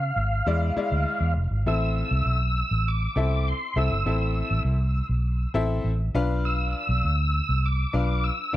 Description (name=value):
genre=uptempo 1960s-style soul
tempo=100 BPM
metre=4/4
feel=straight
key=A minor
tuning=A4 = 436 Hz
part: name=tonewheel organ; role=melody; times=0.0-8.6 s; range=E#5 to E6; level=-29 LUFS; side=right 1 dB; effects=overdrive, chorus vibrato, slow rotary speaker, plate reverb, analog delay
part: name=vintage muted fingered electric bass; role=bass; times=0.0-8.6 s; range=E#1 to C#3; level=-24 LUFS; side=equal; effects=none
part: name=bright upright piano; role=accompaniment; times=0.5-8.6 s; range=G#3 to F5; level=-29 LUFS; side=left 4 dB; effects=plate reverb
room=light reverb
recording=dark, warm production, nothing above 10.8 kHz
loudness=-22 LUFS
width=side -14 dB against mid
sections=0.0-1.7 A section; 1.7-8.6 B section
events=none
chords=0.5 E7; 1.7 Am; 6.2 Bdim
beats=0.48 1.07 | 1.67 2.27 2.87 3.46 | 4.06 4.66 5.26 5.85 | 6.45 7.05 7.65 8.24